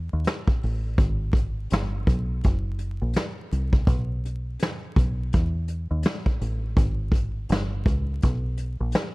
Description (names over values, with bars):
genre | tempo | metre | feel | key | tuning
lo-fi hip hop | 83 BPM | 4/4 | swing 61% on 16ths | unclear | A4 = 439 Hz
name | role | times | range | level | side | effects
deep dub fingered electric bass | bass | 0.0-8.9 s | F#1 to E2 | -26 LUFS | equal | none
vintage brush drum kit | drums | 0.2-9.1 s | hi-hat, kick drum, snare drum | -23 LUFS | equal | none
room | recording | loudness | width
little or no reverb | dark, warm production, vinyl crackle | -23 LUFS | side -23 dB against mid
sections
0.0-9.1 A section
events
none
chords
none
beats
0.26 | 0.98 1.70 2.43 3.15 | 3.87 4.59 5.32 6.04 | 6.76 7.49 8.21 8.93